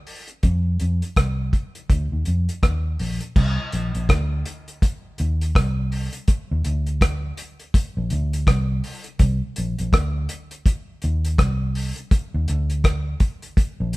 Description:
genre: lovers rock reggae.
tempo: 82 BPM.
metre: 4/4.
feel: swing 60% on 16ths.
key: unclear.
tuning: A4 = 441 Hz.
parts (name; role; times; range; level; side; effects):
cloth-damped thuddy drum kit; drums; 0.1-14.0 s; crash cymbal, hi-hat, kick drum, rim click; -20 LUFS; equal; none.
vintage muted fingered electric bass; bass; 0.4-13.9 s; Bb1 to F2; -22 LUFS; equal; none.
room: light reverb.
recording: band playing live in one room, faint mains hum.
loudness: -20 LUFS.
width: side -20 dB against mid.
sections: 0.0-3.4 A section; 3.4-14.0 B section.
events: none.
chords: none.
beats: | 0.44 1.17 1.90 2.63 | 3.36 4.09 4.82 5.55 | 6.28 7.01 7.74 8.47 | 9.20 9.93 10.66 11.39 | 12.12 12.85 13.57.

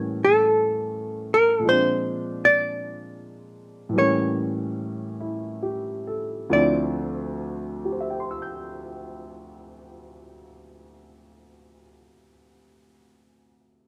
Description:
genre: jazz ballad.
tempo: 45-56 BPM.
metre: 4/4.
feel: swing 69% on 8ths.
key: D minor.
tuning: A4 = 436 Hz.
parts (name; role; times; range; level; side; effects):
hollow-body jazz guitar; melody; 0.0-10.4 s; A4 to D5; -22 LUFS; equal; slapback echo.
warm grand piano; accompaniment; 0.0-13.9 s; D2 to G6; -30 LUFS; equal; none.
room: little or no reverb.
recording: recorded outdoors, with no room sound.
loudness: -24 LUFS.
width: mono.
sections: 0.0-6.5 A section; 6.5-11.8 B section.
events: slowing down 0.0-6.5.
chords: 0.0 A7b9; 1.6 Bb9; 3.9 A7b9; 6.5 Dm7.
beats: 0.54 | 1.63 2.76 3.94 5.18 | 6.49 7.83 9.17 10.51.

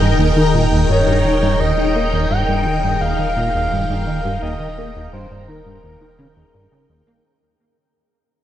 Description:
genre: ambient, sequencer-driven space music.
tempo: 85 BPM.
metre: 4/4.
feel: straight.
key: unclear.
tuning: A4 = 440 Hz.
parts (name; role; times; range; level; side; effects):
breathy flute-like synth lead; melody; 0.0-6.9 s; Bb4 to G5; -22 LUFS; equal; lush chorus, analog delay.
phased string machine; sustained chords; 0.0-7.2 s; Eb3 to G5; -20 LUFS; left 1 dB; ensemble chorus, phaser.
plucky analog bass; riff; 0.0-7.2 s; Eb2 to Bb3; -20 LUFS; equal; ensemble chorus, analog delay.
round analog bass; bass; 0.0-7.2 s; Eb1; -23 LUFS; equal; none.
bubbling stepped-filter texture; texture; 0.0-7.3 s; Ab4 to G6; -31 LUFS; right 1 dB; chorus, built-in reverb.
room: wet huge ambient reverb, RT60 7.6 s.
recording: none.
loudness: -15 LUFS.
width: side -11 dB against mid.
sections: 0.0-7.2 A section.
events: fade-out 0.0-7.2; filter sweep on analog synth bass 0.0-7.2.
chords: 0.0 Eb.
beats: 0.19 0.89 | 1.60 2.31 3.01 3.72 | 4.42 5.13 5.83 6.54.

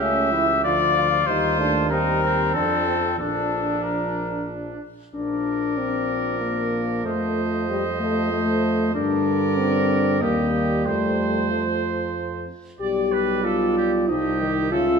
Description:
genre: classical, brass quintet.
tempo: 94 BPM.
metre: 3/4.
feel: straight.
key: Bb major.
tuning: A4 = 440 Hz.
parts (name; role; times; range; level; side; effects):
clear trumpet; melody; 0.0-15.0 s; A4 to E5; -26 LUFS; left 6 dB; none.
clear trumpet; second line; 0.0-15.0 s; C4 to D5; -28 LUFS; right 8 dB; none.
dark French horn; accompaniment; 0.0-15.0 s; E3 to G4; -24 LUFS; left 3 dB; none.
warm trombone; accompaniment; 0.0-15.0 s; C#3 to F4; -28 LUFS; right 5 dB; none.
warm bass trombone; bass; 0.0-15.0 s; Bb1 to G2; -28 LUFS; right 3 dB; none.
room: wet recital hall reverb, RT60 1.5 s.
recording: minimal, uncompressed stereo recording.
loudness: -20 LUFS.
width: side -5 dB against mid.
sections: 0.0-5.1 A section; 5.1-15.0 B section.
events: none.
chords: 0.0 A7/C#; 0.6 Dm; 1.3 Cm/Eb; 2.5 F; 3.2 Bb; 7.1 F7; 9.0 Gm; 10.2 Eb; 10.9 F; 12.8 G7/B; 14.1 Cm.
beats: 0.01 0.64 | 1.27 1.90 2.54 | 3.19 3.84 4.49 | 5.14 5.78 6.42 | 7.05 7.68 8.31 | 8.96 9.59 10.22 | 10.87 11.51 12.16 | 12.81 13.45 14.09 | 14.72.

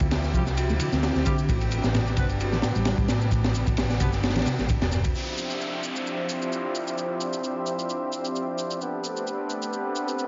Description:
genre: breakbeat, breaks.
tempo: 131 BPM.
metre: 4/4.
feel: swing 54% on 16ths.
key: D minor.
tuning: A4 = 440 Hz.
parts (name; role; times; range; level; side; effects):
lush unison pad; sustained chords; 0.0-10.3 s; C3 to E5; -35 LUFS; equal; chorus, vintage 12-bit sampler grit, sidechain pumping.
hollow-body short-scale fingered electric bass; bass; 0.0-5.1 s; E1 to D2; -29 LUFS; equal; tube saturation.
crunchy breakbeat drum kit; drums; 0.0-5.1 s; kick drum, ride cymbal, snare drum; -29 LUFS; equal; none.
shaker; drums; 0.0-10.3 s; none; -40 LUFS; equal; none.
mellow tonewheel organ; riff; 0.1-5.0 s; G2 to C4; -31 LUFS; equal; fast rotary speaker, tape echo.
warm horn section; stabs; 0.3-10.3 s; G3 to C5; -34 LUFS; equal; vintage 12-bit sampler grit, low-pass filter, tape echo.
downlifter; sound effects; 5.2-8.8 s; none; -38 LUFS; equal; none.
room: light reverb, small room ambience.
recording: nothing above 7.4 kHz.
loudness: -26 LUFS.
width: mono.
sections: 0.0-5.2 A section; 5.2-10.3 B section.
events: filter sweep on horn section 5.2-10.3.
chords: 0.0 Dm11; 1.5 Am11; 5.2 Dm11; 8.8 Am11.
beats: 0.11 0.57 1.03 | 1.49 1.95 2.40 2.86 | 3.32 3.78 4.24 4.69 | 5.15 5.61 6.07 6.53 | 6.98 7.44 7.90 8.36 | 8.82 9.27 9.73 10.19.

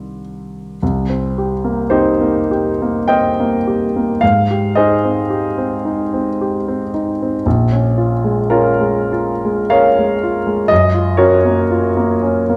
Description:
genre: classical, impressionist solo piano.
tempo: 55 BPM.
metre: 3/4.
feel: uneven beats, rubato.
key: unclear.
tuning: A4 = 440 Hz.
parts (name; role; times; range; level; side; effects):
clear grand piano; solo; 0.0-12.6 s; Bb1 to G5; -16 LUFS; equal; none.
room: wet recital hall reverb, RT60 1.5 s.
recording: none.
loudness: -16 LUFS.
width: mono.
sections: 0.8-12.6 A section.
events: none.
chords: 0.0 Cm11; 0.8 Cm7; 4.2 Abmaj7; 7.5 Bbm7; 10.7 F#maj7.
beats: | 0.82 1.93 3.10 | 4.22 5.30 6.39 | 7.46 8.51 9.71 | 10.71 11.73.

